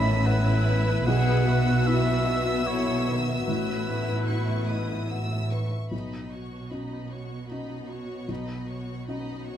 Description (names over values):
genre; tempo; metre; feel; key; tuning
cinematic, emotional film score for orchestra; 75 BPM; 3/4; rubato; unclear; A4 = 439 Hz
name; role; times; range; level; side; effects
clear studio violin section; melody; 0.0-9.6 s; B5 to E6; -38 LUFS; left 1 dB; none
hollow large flute ensemble; second line; 0.0-5.1 s; E4 to E5; -38 LUFS; equal; none
warm clarinet; second line; 0.0-5.1 s; B4 to B5; -36 LUFS; equal; none
warm oboe; second line; 0.0-5.1 s; B4 to B5; -33 LUFS; right 2 dB; none
warm studio violin section; second line; 0.0-9.6 s; B4 to E5; -38 LUFS; left 4 dB; none
felt-muted upright piano; accompaniment; 0.0-9.6 s; A1 to F#5; -34 LUFS; left 2 dB; none
warm studio viola section; accompaniment; 0.0-9.6 s; D#3 to G#4; -37 LUFS; left 1 dB; none
warm French horn section; sustained chords; 0.0-5.6 s; B3 to F#4; -33 LUFS; left 6 dB; none
warm studio cello section; bass; 0.0-9.6 s; A2 to B2; -30 LUFS; equal; none
warm studio double bass section; bass; 0.0-5.7 s; A1 to B1; -27 LUFS; right 2 dB; none
room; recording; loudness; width
moderate scoring stage reverb, RT60 1.6 s; none; -24 LUFS; side -10 dB against mid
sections
0.0-5.9 A section; 5.9-9.6 B section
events
none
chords
0.0 Asus2; 1.1 Esus2/B; 3.5 Asus2; 5.9 Badd9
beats
0.26 | 1.07 1.87 2.67 | 3.48 4.30 5.11 | 5.92 6.72 7.51 | 8.29 9.07